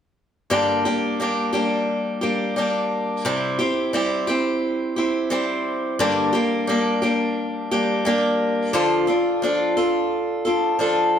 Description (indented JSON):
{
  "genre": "rock",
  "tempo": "87 BPM",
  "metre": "4/4",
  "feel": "straight",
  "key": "G dorian",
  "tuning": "A4 = 440 Hz",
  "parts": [
    { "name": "picked swing-style acoustic guitar", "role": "solo", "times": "0.5-11.2 s", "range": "G2 to A4", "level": "-19 LUFS", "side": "equal", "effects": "slapback echo" }
  ],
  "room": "moderate echo chamber reverb, RT60 2.5 s",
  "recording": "none",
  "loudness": "-19 LUFS",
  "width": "side -8 dB against mid",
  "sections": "0.5-11.2 A section",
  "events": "none",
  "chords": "0.5 Gm; 3.3 C; 6.0 Gm; 8.8 Dm"
}